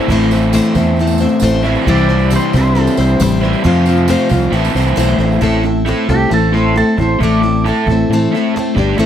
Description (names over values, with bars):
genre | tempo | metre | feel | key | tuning
folk rock and heartland rock | 135 BPM | 4/4 | straight | A minor | A4 = 441 Hz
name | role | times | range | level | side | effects
picked plugged-in acoustic archtop guitar | accompaniment | 0.0-9.1 s | A2 to D5 | -16 LUFS | left 4 dB | none
crunchy overdriven guitar | riff | 0.0-9.1 s | F2 to A4 | -16 LUFS | right 2 dB | none
fingered electric bass | bass | 0.1-9.1 s | G1 to A2 | -16 LUFS | right 1 dB | none
cajon | drums | 0.1-9.1 s | none | -21 LUFS | right 1 dB | none
tambourine | percussion | 0.2-5.4 s | none | -34 LUFS | right 17 dB | none
pedal steel guitar | second line | 1.9-3.2, 6.1-9.0 s | G4 to D5 | -19 LUFS | right 2 dB | none
room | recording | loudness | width
little or no reverb | dry, close 1970s-style studio recording | -11 LUFS | side -10 dB against mid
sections
0.0-5.4 A section; 5.4-9.1 B section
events
kick and snare drop out 4.5-5.4; pedal steel guitar solo 5.4-9.1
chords
0.0 Am; 1.9 C; 3.6 F; 4.5 Am; 8.8 G5